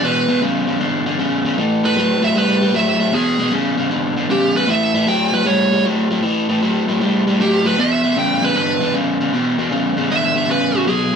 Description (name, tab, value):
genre	blues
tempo	155 BPM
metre	4/4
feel	swing 67% on 8ths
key	unclear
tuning	A4 = 440 Hz
part	dark smooth lead guitar	melody	0.0-11.2 s	F#4 to G5	-18 LUFS	right 2 dB	overdrive
part	overdriven electric guitar	riff	0.0-11.2 s	E2 to G3	-16 LUFS	left 1 dB	none
room	wet small room reverb, RT60 0.5 s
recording	band playing live in one room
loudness	-14 LUFS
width	side -6 dB against mid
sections	0.0-11.2 A section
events	none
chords	0.0 E5; 1.6 A5; 3.1 E; 4.7 A5; 7.8 E5